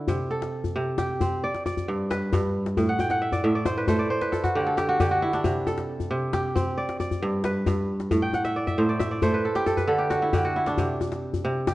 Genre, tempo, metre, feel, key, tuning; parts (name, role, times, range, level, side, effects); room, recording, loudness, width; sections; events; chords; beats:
west african traditional, West African string and xylophone music; 90 BPM (dotted quarters); 12/8; straight; C lydian; A4 = 440 Hz
kora; arpeggios; 0.0-11.7 s; G2 to G5; -24 LUFS; right 1 dB
djembe; percussion; 0.1-11.7 s; -28 LUFS; left 3 dB
moderate recital hall reverb, RT60 1.4 s; worn, warbling old tape, cassette tape, warbly pitch drift, nothing above 10.6 kHz; -23 LUFS; side -16 dB against mid
0.1-11.7 A section
kora fill 2.9-5.4, 8.2-10.8
0.1 C; 1.4 G; 2.8 N.C.; 5.4 C5; 6.8 G; 8.1 N.C.; 10.8 C5
| 0.09 0.76 1.43 2.10 | 2.77 3.44 4.11 4.77 | 5.44 6.11 6.78 7.44 | 8.11 8.78 9.45 10.11 | 10.78 11.45